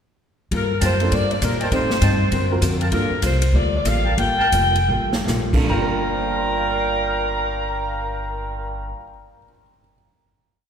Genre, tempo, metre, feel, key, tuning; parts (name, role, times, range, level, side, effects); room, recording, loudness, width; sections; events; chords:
jazz, big band swing; 139-200 BPM; 4/4; swing 63% on 8ths; G minor; A4 = 440 Hz
vintage hollow-body jazz guitar; accompaniment; 0.5-9.2 s; A2 to A#4; -27 LUFS; left 3 dB
upright bass; bass; 0.5-8.9 s; F1 to Bb2; -22 LUFS; equal
swinging big-band drum kit; drums; 0.5-5.6 s; crash cymbal, hi-hat, kick drum, ride cymbal, snare drum; -26 LUFS; equal
warm saxophone section; melody; 0.6-8.9 s; F4 to G5; -23 LUFS; left 1 dB
warm trumpet section; stabs; 0.8-9.0 s; Bb4 to Bb5; -26 LUFS; right 2 dB
bright upright piano; accompaniment; 1.0-3.1, 5.5-9.9 s; G2 to C7; -29 LUFS; right 4 dB
wet concert hall reverb, RT60 1.9 s; recorded in a church or concert hall; -18 LUFS; side -8 dB against mid
0.5-5.7 A section; 5.7-9.1 final chord
slowing down 2.9-5.7; drum fill 4.9-5.3
0.5 Gm9; 1.7 Am7b5; 2.3 D7alt; 2.9 Gm9